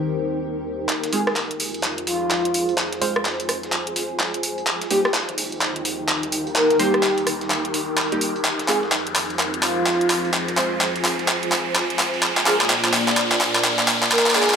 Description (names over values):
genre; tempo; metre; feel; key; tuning
bass house; 127 BPM; 4/4; swing 62% on 16ths; F dorian; A4 = 440 Hz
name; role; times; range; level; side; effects
dark analog pad; sustained chords; 0.0-14.6 s; Bb2 to D5; -31 LUFS; left 2 dB; chorus, phaser
granular cloud pad; texture; 0.0-14.6 s; Eb4 to Bb5; -28 LUFS; right 1 dB; built-in reverb
dusty soul sampler-style drum kit; drums; 0.9-14.5 s; hi-hat, snare drum; -34 LUFS; right 1 dB; none
garage drum kit; drums; 0.9-14.6 s; handclaps, hi-hat, rim click; -21 LUFS; equal; overdrive, high-pass filter on cymbals, studio reverb, high-pass filter on snare, high-pass filter on hats
riser and noise sweep; sound effects; 4.6-14.6 s; none; -29 LUFS; equal; none
breathy flute-like synth lead; melody; 1.1-14.6 s; F4 to Bb4; -23 LUFS; equal; analog chorus, dub echo
band-passed chord stab; stabs; 1.1-14.6 s; G3 to D5; -27 LUFS; right 3 dB; phaser, lush chorus, cassette tape, dub echo
room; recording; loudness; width
moderate digital room reverb, RT60 1.1 s, digital ambience; high-pass filter; -18 LUFS; side -6 dB against mid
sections
0.9-14.6 A section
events
build-up 0.9-14.6; drum fill 0.9-14.6; filter sweep on synth stab 0.9-14.6; filter sweep on analog synth pad 0.9-14.6; riser 4.6-14.6; noise sweep 14.1-14.6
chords
0.0 Eb; 0.9 Fm; 4.7 Eb; 8.4 Fm; 12.2 Bb